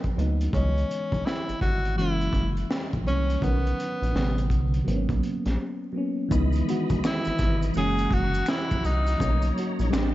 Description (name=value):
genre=R&B, neo-soul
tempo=83 BPM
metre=4/4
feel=swing 63% on 16ths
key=C# dorian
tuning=A4 = 440 Hz
part: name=breathy tenor saxophone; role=melody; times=0.0-9.6 s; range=B3 to G#4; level=-30 LUFS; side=left 1 dB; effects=none
part: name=mellow FM electric piano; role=accompaniment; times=0.0-10.1 s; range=C3 to D#5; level=-29 LUFS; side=right 1 dB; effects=chorus, phaser
part: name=crunchy breakbeat drum kit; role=drums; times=0.0-10.1 s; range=hi-hat, kick drum, snare drum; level=-29 LUFS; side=equal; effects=none
part: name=rubbery square bass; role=bass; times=0.2-10.1 s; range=F#1 to D2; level=-26 LUFS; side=equal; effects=none
part: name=percussive tonewheel organ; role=sustained chords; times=6.3-10.1 s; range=E3 to C6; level=-36 LUFS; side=equal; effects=fast rotary speaker, overdrive, chorus vibrato
part: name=maracas and finger snaps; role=percussion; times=6.3-10.1 s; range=none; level=-44 LUFS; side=left 4 dB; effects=none
room=light reverb, studio ambience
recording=vinyl crackle, nothing above 7.7 kHz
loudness=-23 LUFS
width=side -15 dB against mid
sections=0.0-6.3 A section; 6.3-10.1 B section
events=break 5.6-6.3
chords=0.0 G#m11 (rootless); 0.5 C#m9; 2.0 F#7; 3.4 Bmaj9; 4.1 Am11; 4.9 G#m11; 6.3 C#m9; 7.8 F#7; 9.2 Bmaj9